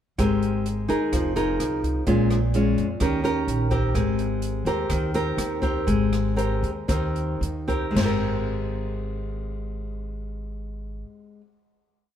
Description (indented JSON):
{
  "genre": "bossa nova",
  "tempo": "108-128 BPM",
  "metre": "4/4",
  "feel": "straight",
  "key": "Ab major",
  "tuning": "A4 = 440 Hz",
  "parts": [
    { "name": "nylon-string guitar", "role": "accompaniment", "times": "0.2-11.6 s", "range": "Bb2 to Bb4", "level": "-24 LUFS", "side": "left 1 dB", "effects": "none" },
    { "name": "upright bass", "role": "bass", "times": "0.2-11.0 s", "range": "F1 to F2", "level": "-27 LUFS", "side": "right 1 dB", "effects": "none" },
    { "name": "open jazz drum kit", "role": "drums", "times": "0.2-8.1 s", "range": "crash cymbal, hi-hat, kick drum, rim click, snare drum, toms", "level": "-30 LUFS", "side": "equal", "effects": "none" }
  ],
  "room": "light reverb",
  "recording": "heard from further back in the room",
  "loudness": "-22 LUFS",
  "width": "side -10 dB against mid",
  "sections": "0.2-8.0 A section; 8.0-12.2 final chord",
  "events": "slowing down 3.9-8.0",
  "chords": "0.2 Abmaj9; 1.1 Fm7; 2.1 Bbm7; 3.0 Eb7; 3.9 Abmaj9"
}